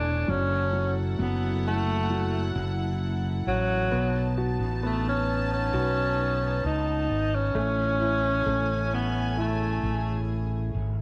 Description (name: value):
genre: pop ballad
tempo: 66 BPM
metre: 4/4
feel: straight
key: A major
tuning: A4 = 440 Hz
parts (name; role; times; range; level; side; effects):
- warm alto saxophone; melody; 0.0-10.3 s; F#3 to D#4; -30 LUFS; equal; none
- warm concert grand piano; accompaniment; 0.0-11.0 s; F#3 to F#4; -36 LUFS; equal; none
- warm studio string section; sustained chords; 0.0-11.0 s; C#4 to A5; -38 LUFS; equal; none
- fretless electric bass; bass; 0.0-11.0 s; E1 to C#2; -30 LUFS; equal; subtle chorus
room: light reverb, studio reverb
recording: dark, warm production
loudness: -27 LUFS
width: mono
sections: 0.0-11.0 A section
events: none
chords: 0.3 F#m7; 3.9 B7; 7.6 Amaj7